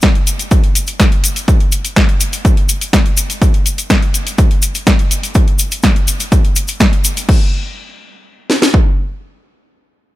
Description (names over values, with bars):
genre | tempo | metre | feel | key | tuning
techno | 124 BPM | 4/4 | straight | none | none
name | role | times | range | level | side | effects
house drum kit | drums | 0.0-8.9 s | kick drum, snare drum | -12 LUFS | equal | overdrive
house drum kit | drums | 0.0-7.4 s | crash cymbal, hi-hat, snare drum | -17 LUFS | equal | none
cabasa | percussion | 0.0-7.3 s | none | -19 LUFS | left 3 dB | none
room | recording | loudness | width
little or no reverb | none | -11 LUFS | side -16 dB against mid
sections
0.0-7.3 A section; 7.3-10.2 B section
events
drop 0.0-7.3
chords
none